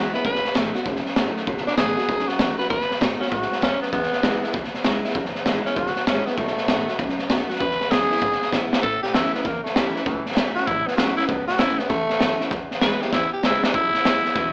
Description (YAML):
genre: rockabilly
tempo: 196 BPM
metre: 4/4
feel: swing 65% on 8ths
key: E major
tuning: A4 = 441 Hz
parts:
  - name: growling tenor saxophone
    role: melody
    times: 0.0-14.5 s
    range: E3 to B4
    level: -23 LUFS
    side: equal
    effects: slapback echo
  - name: picked steel-string acoustic guitar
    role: accompaniment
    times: 0.0-14.5 s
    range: E2 to F#4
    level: -27 LUFS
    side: equal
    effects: none
  - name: upright bass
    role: bass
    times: 0.0-14.5 s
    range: F#1 to B2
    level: -31 LUFS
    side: equal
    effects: none
  - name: raw garage drum kit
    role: drums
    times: 0.1-14.4 s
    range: hi-hat, kick drum, snare drum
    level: -23 LUFS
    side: equal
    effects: none
room: moderate studio reverb, RT60 0.6 s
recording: AM radio sound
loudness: -19 LUFS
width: side -36 dB against mid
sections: 0.0-8.8 A section; 8.8-14.5 B section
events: drum fill 8.5-8.8, 13.1-13.7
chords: 0.2 B7; 3.9 E; 6.4 B7; 7.6 E; 8.8 A; 12.5 E